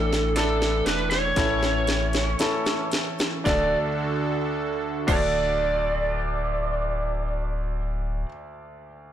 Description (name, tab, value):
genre	pop ballad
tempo	56-61 BPM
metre	4/4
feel	straight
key	D major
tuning	A4 = 443 Hz
part	lead guitar through a small cranked amp	melody	0.0-8.3 s	A4 to D5	-26 LUFS	right 2 dB	overdrive, ping-pong delay
part	warm concert grand piano	accompaniment	0.0-9.1 s	D2 to A4	-30 LUFS	left 1 dB	none
part	warm analog pad	sustained chords	0.0-6.6 s	D3 to A4	-31 LUFS	right 2 dB	chorus
part	warm sub bass	bass	0.0-8.2 s	D1 to A1	-28 LUFS	left 1 dB	none
part	house drum kit	drums	0.1-5.4 s	crash cymbal, hi-hat, kick drum, snare drum	-27 LUFS	equal	none
part	egg shaker	percussion	0.1-5.4 s	none	-45 LUFS	left 12 dB	none
room	light reverb, digital ambience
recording	blown-out, overdriven recording, overdrive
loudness	-22 LUFS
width	side -10 dB against mid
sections	0.0-3.5 A section; 3.5-7.8 B section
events	drum fill 0.0-3.5; slowing down 0.0-3.5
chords	0.0 Asus4; 1.4 A; 3.5 D